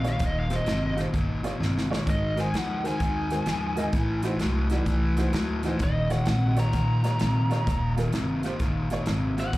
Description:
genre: electric blues shuffle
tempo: 129 BPM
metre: 4/4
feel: swing 65% on 8ths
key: Eb mixolydian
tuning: A4 = 440 Hz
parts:
  - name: biting lead guitar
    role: melody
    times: 0.0-9.6 s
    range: Eb5 to Bb5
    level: -33 LUFS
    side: equal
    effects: overdrive, plate reverb, slapback echo, tape echo
  - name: warm upright piano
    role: accompaniment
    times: 0.0-9.5 s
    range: Eb4 to Eb5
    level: -35 LUFS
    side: right 3 dB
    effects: plate reverb, slapback echo
  - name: crunchy overdriven guitar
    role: riff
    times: 0.0-9.6 s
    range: Eb2 to F#3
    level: -28 LUFS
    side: left 1 dB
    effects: slapback echo
  - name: upright bass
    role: bass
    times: 0.0-9.6 s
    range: Eb1 to Eb2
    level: -28 LUFS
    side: equal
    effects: none
  - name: natural country drum kit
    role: drums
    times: 0.0-9.6 s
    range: hi-hat, kick drum, snare drum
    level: -31 LUFS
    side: equal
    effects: none
room: light reverb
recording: live gig heard through the venue's PA, club ambience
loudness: -23 LUFS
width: side -17 dB against mid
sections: 0.0-9.6 A section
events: drum fill 1.6-2.1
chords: 0.0 Eb; 2.1 Ab7; 3.9 Adim7; 5.8 Eb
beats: | 0.20 0.67 1.14 1.60 | 2.07 2.54 3.00 3.47 | 3.93 4.40 4.87 5.33 | 5.80 6.27 6.73 7.20 | 7.67 8.13 8.60 9.07 | 9.53

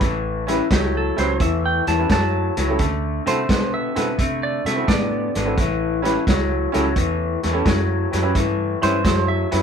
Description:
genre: electric blues shuffle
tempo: 86 BPM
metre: 4/4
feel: swing 68% on 8ths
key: A mixolydian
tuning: A4 = 439 Hz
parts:
  - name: electric guitar through a small old amp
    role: riff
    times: 0.0-9.6 s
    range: A2 to B3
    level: -23 LUFS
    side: left 4 dB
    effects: none
  - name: vintage muted fingered electric bass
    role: bass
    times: 0.0-9.6 s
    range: G#1 to C3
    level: -25 LUFS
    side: right 1 dB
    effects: none
  - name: vintage drum kit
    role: drums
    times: 0.0-9.6 s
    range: hi-hat, kick drum, snare drum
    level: -22 LUFS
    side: equal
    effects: none
  - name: bright upright piano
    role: accompaniment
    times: 0.5-9.6 s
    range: C4 to C#5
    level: -25 LUFS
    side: right 4 dB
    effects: none
  - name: clean lap steel guitar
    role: second line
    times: 0.7-9.6 s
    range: G4 to A5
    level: -24 LUFS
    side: right 3 dB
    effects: none
room: moderate studio reverb, RT60 0.5 s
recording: band playing live in one room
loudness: -18 LUFS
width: side -7 dB against mid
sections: 0.0-9.6 A section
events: electric slide guitar solo 0.0-9.6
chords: 0.0 A7; 2.8 D7; 5.6 A7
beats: | 0.01 0.71 1.40 2.10 | 2.79 3.49 4.18 4.88 | 5.57 6.27 6.96 7.66 | 8.35 9.05

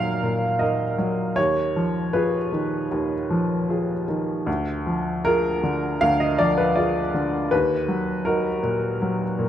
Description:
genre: classical, romantic character piece for solo piano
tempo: 78 BPM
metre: 4/4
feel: rubato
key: Eb minor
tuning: A4 = 439 Hz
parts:
  - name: clear upright piano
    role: solo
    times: 0.0-9.5 s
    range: D2 to F5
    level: -20 LUFS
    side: equal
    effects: none
room: moderate large studio reverb, RT60 1.3 s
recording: dark, warm production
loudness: -20 LUFS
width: side -10 dB against mid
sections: 0.0-9.5 A section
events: none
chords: 0.0 Ebm; 1.4 Fm7b5/Eb; 4.5 Bb7/D; 7.5 Ebm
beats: 0.61 | 1.37 2.13 2.91 3.69 | 4.47 5.25 6.01 6.77 | 7.52 8.26 9.01

